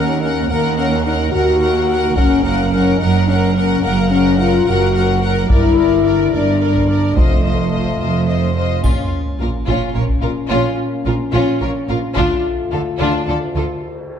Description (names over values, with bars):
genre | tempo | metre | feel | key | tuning
cinematic, epic orchestral film score | 72 BPM (dotted quarters) | 6/8 | straight | Bb harmonic minor from 8.8 s | A4 = 440 Hz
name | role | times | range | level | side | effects
rich studio violin section | melody | 0.0-13.6 s | F4 to Gb5 | -25 LUFS | left 3 dB | none
rich studio violin section | second line | 0.0-13.6 s | Db4 to C5 | -24 LUFS | left 3 dB | none
rich studio viola section | accompaniment | 0.0-13.6 s | F4 to Bb4 | -25 LUFS | equal | none
mellow French horn section | sustained chords | 0.0-13.8 s | A3 to Gb4 | -19 LUFS | left 4 dB | none
clear symphonic double bass section | bass | 0.0-13.6 s | F1 to Eb2 | -20 LUFS | right 4 dB | none
rich symphonic cello section | bass | 0.0-13.6 s | Eb2 to D3 | -22 LUFS | right 3 dB | none
taiko ensemble | drums | 2.2-13.2 s | none | -18 LUFS | equal | none
triangle and cymbal swell | percussion | 8.8-14.2 s | none | -36 LUFS | left 1 dB | none
sub drop and cymbal swell | sound effects | 9.0-10.5, 13.8-14.2 s | none | -25 LUFS | equal | none
room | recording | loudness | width
wet scoring stage reverb, RT60 1.8 s | dark, warm production | -14 LUFS | side -8 dB against mid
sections
0.0-8.8 A section; 8.8-14.2 B section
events
impact 8.8-10.5; break 13.8-14.2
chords
0.0 Ebm; 2.2 Gb; 5.5 Gm; 7.2 F7; 8.8 Bbm; 12.2 Dm